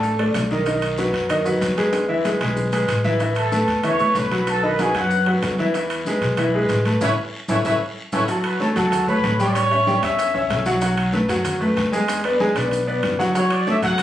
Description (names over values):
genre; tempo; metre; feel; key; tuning
latin, salsa; 189 BPM; 4/4; straight; A major; A4 = 440 Hz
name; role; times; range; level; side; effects
mellow trumpet section; melody; 0.0-0.2, 3.4-10.6, 13.4-14.0 s; F#4 to E6; -22 LUFS; right 1 dB; none
clear concert grand piano; accompaniment; 0.0-14.0 s; D#3 to G#5; -20 LUFS; equal; none
upright bass; bass; 0.0-14.0 s; F#1 to F#2; -27 LUFS; equal; none
bongos; percussion; 0.0-14.0 s; none; -34 LUFS; left 3 dB; none
congas; percussion; 0.0-14.0 s; none; -30 LUFS; equal; none
guiro; percussion; 0.0-14.0 s; none; -34 LUFS; left 1 dB; none
maracas; percussion; 0.0-14.0 s; none; -39 LUFS; left 1 dB; none
timbales; percussion; 0.2-14.0 s; none; -31 LUFS; right 5 dB; none
room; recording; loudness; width
moderate small room reverb, RT60 0.5 s; recorded on a phone in the room, studio reverb; -18 LUFS; side -12 dB against mid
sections
0.0-8.3 A section; 8.3-14.0 B section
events
drum fill 1.9-3.2, 7.3-8.3, 12.6-13.4; band accent 7.0-8.3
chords
0.0 D5; 0.7 B; 1.9 E; 3.2 Asus2; 4.5 B; 5.7 E; 7.0 Aadd9; 8.3 F#m; 9.6 A7; 10.8 B5; 12.1 E9; 13.4 F#m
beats
0.03 0.35 | 0.67 0.98 1.30 1.62 | 1.94 2.25 2.57 2.89 | 3.20 3.52 3.84 4.16 | 4.47 4.79 5.11 5.42 | 5.74 6.06 6.38 6.70 | 7.01 7.33 7.65 7.97 | 8.28 8.60 8.92 9.23 | 9.55 9.87 10.19 10.50 | 10.82 11.14 11.45 11.77 | 12.09 12.40 12.72 13.04 | 13.36 13.67 13.99